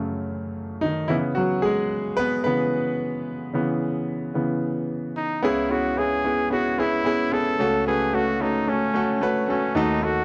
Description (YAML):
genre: pop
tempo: 111 BPM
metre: 4/4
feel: straight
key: C# minor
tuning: A4 = 439 Hz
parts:
  - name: bright concert grand piano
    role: accompaniment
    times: 0.0-10.2 s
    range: C#2 to B4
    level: -25 LUFS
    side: equal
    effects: none
  - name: clear trumpet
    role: melody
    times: 5.2-10.2 s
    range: C#4 to A4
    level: -27 LUFS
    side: equal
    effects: none
room: moderate studio reverb, RT60 0.6 s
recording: dark, warm production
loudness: -24 LUFS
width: mono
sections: 0.0-5.4 A section; 5.4-10.2 B section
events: grand piano solo 0.0-5.4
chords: 0.0 F#m; 1.1 C#m7; 7.6 F#m/C#